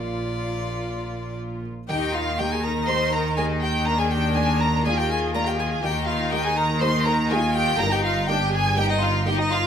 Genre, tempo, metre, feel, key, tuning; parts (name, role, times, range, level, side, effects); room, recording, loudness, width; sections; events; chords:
classical, baroque-style concerto movement with solo episodes; 122 BPM; 4/4; straight; Eb major; A4 = 438 Hz
clear violin; melody; 0.0-9.7 s; D5 to C6; -28 LUFS; left 1 dB
rich chamber violin section; melody; 0.0-9.7 s; Bb4 to C6; -29 LUFS; right 3 dB
rich chamber violin section; second line; 0.0-9.7 s; Eb4 to C5; -29 LUFS; equal
buff-stop harpsichord; accompaniment; 0.0-9.7 s; G2 to Bb4; -34 LUFS; right 1 dB
rich chamber viola section; accompaniment; 0.0-9.7 s; D4 to F4; -29 LUFS; left 4 dB
clear chamber cello section; bass; 0.0-9.7 s; G2 to Eb3; -30 LUFS; right 1 dB
warm chamber double bass section; bass; 0.0-9.7 s; G1 to Eb2; -26 LUFS; equal
moderate stone room reverb, RT60 1.0 s; -20 LUFS; side -8 dB against mid
0.0-1.9 A section; 1.9-9.7 B section
0.0 Bb; 1.9 Eb; 3.9 Bb/Eb; 5.8 Eb; 7.8 Eb/G